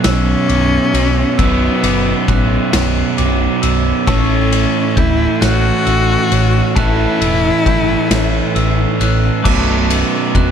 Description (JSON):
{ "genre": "post-rock", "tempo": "45 BPM (dotted quarters)", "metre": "6/8", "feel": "straight", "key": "B minor", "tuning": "A4 = 440 Hz", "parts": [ { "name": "warm cello", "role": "melody", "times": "0.0-10.3 s", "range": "A3 to F#4", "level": "-18 LUFS", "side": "left 4 dB", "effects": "analog delay" }, { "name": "pedal steel guitar", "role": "sustained chords", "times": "0.0-10.5 s", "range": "A4 to D6", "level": "-29 LUFS", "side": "left 3 dB", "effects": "none" }, { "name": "electric guitar through a small old amp", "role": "arpeggios", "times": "0.0-10.5 s", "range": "B1 to C#4", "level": "-24 LUFS", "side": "left 6 dB", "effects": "analog delay" }, { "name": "glockenspiel with soft plastic mallets", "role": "arpeggios", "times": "0.0-10.5 s", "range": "D6 to G6", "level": "-25 LUFS", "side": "right 2 dB", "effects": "analog delay" }, { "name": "distorted electric guitar", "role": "riff", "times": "0.0-10.5 s", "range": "B1 to A3", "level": "-17 LUFS", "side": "right 8 dB", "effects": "distortion" }, { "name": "hollow-body short-scale fingered electric bass", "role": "bass", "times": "0.0-10.5 s", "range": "B0 to B1", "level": "-17 LUFS", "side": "left 1 dB", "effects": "none" }, { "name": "loose indie drum kit", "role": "drums", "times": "0.0-10.5 s", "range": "crash cymbal, kick drum, ride cymbal, snare drum", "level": "-19 LUFS", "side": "left 2 dB", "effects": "none" } ], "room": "small room ambience", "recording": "none", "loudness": "-12 LUFS", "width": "side -8 dB against mid", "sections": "0.0-10.5 A section", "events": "none", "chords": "0.0 Bm7; 4.1 A7; 9.5 Bm7" }